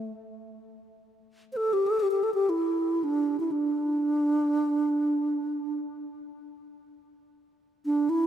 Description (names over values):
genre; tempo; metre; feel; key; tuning
world meditative; free time; none; none; unclear; A4 = 440 Hz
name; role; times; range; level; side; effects
breathy bass flute; solo; 0.0-8.3 s; A3 to C5; -25 LUFS; right 1 dB; diffuse ambient delay
room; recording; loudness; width
wet church reverb, RT60 3.6 s; none; -24 LUFS; side -10 dB against mid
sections
0.7-8.3 A section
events
none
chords
none